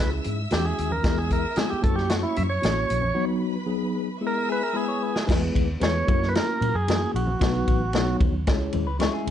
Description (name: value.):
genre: uptempo 1960s-style soul.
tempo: 113 BPM.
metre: 4/4.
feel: straight.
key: E major.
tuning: A4 = 440 Hz.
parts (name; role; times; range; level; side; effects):
tonewheel organ; melody; 0.0-8.2 s; E4 to E5; -28 LUFS; right 2 dB; overdrive.
rich studio violin section; second line; 0.0-5.3 s; B4 to E6; -36 LUFS; equal; none.
mellow tine electric piano; accompaniment; 0.0-9.3 s; F#3 to E5; -28 LUFS; left 4 dB; medium stereo tremolo.
vintage muted fingered electric bass; bass; 0.0-9.3 s; A1 to A#2; -27 LUFS; equal; none.
vintage drum kit; drums; 0.2-9.3 s; crash cymbal, hi-hat, kick drum, ride cymbal, snare drum; -25 LUFS; equal; none.
congas; percussion; 0.3-9.1 s; none; -36 LUFS; right 2 dB; none.
semi-hollow electric guitar; riff; 4.5-5.4, 8.9-9.3 s; G#4 to C#5; -32 LUFS; left 7 dB; none.
room: light reverb.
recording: dark, warm production, nothing above 10.4 kHz.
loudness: -22 LUFS.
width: side -10 dB against mid.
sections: 0.0-5.3 A section; 5.3-9.3 B section.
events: tonewheel organ solo 0.0-5.3; break 3.2-5.3; drum fill 4.8-5.3.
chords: 0.0 C#m; 1.0 E; 1.8 F#7; 3.2 B; 4.2 E; 6.1 F#7; 7.4 B; 8.5 C#m.